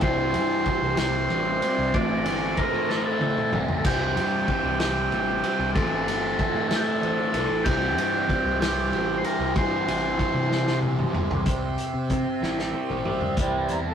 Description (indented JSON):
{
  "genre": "psychedelic rock",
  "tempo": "63 BPM (dotted quarters)",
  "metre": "6/8",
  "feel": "straight",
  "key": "C major",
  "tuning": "A4 = 439 Hz",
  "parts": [
    { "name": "combo organ", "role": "melody", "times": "0.0-10.8 s", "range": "G4 to D5", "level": "-26 LUFS", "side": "right 1 dB", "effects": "spring reverb" },
    { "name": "pedal harmonium", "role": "sustained chords", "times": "0.0-13.9 s", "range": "E3 to C6", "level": "-32 LUFS", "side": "right 3 dB", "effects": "none" },
    { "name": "crunchy overdriven guitar", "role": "riff", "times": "0.0-13.9 s", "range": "A2 to E4", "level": "-27 LUFS", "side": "equal", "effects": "phaser" },
    { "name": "fuzz picked electric bass", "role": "bass", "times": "0.0-13.9 s", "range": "G1 to C3", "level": "-31 LUFS", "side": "equal", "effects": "overdrive" },
    { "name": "vintage drum kit", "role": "drums", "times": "0.0-13.8 s", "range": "crash cymbal, hi-hat, kick drum, ride cymbal, snare drum, toms", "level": "-28 LUFS", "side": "equal", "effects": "none" },
    { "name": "congas", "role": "percussion", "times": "0.0-13.9 s", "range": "none", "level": "-40 LUFS", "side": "right 1 dB", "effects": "none" }
  ],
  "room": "light reverb",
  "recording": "rough rehearsal-room recording, tube saturation",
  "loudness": "-22 LUFS",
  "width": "side -8 dB against mid",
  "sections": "0.0-11.5 A section; 11.5-13.4 B section",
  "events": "drum fill 2.9-3.8, 10.5-11.5, 12.4-13.4",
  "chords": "0.0 C; 1.9 Am; 3.8 C; 5.8 Am; 7.7 C"
}